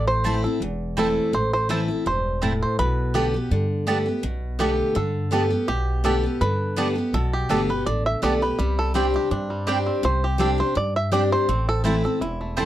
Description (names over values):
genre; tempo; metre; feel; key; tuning
bluegrass; 165 BPM; 4/4; swing 53% on 8ths; unclear; A4 = 440 Hz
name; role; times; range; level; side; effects
bluegrass banjo; melody; 0.0-12.7 s; G3 to E5; -26 LUFS; right 2 dB; none
picked steel-string acoustic guitar; accompaniment; 0.0-12.7 s; E2 to G4; -24 LUFS; left 1 dB; none
upright bass; bass; 0.0-12.7 s; E1 to G2; -26 LUFS; equal; none
mandolin; stabs; 0.2-12.7 s; B3 to A5; -26 LUFS; right 5 dB; slapback echo
room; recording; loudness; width
little or no reverb; dry, close 1970s-style studio recording; -20 LUFS; side -13 dB against mid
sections
0.0-12.7 A section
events
five-string banjo solo 0.0-12.7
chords
0.0 Am; 2.8 Gadd9/B; 8.6 Csus2; 11.5 Am